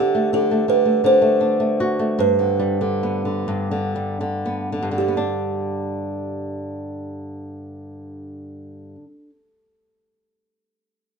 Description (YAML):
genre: children's music, lullaby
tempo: 36-58 BPM (dotted quarters)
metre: 6/8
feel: rubato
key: G major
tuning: A4 = 440 Hz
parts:
  - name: kalimba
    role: melody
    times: 0.0-9.1 s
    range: G4 to C5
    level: -20 LUFS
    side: right 2 dB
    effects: none
  - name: flamenco guitar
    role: accompaniment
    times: 0.0-9.3 s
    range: G2 to F#4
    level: -23 LUFS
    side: left 1 dB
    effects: none
room: light reverb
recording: minimal, uncompressed stereo recording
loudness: -18 LUFS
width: side -5 dB against mid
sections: 0.0-5.0 A section; 5.0-11.2 B section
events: slowing down 0.0-5.0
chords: 0.0 D5; 1.0 D; 2.2 G; 5.0 G5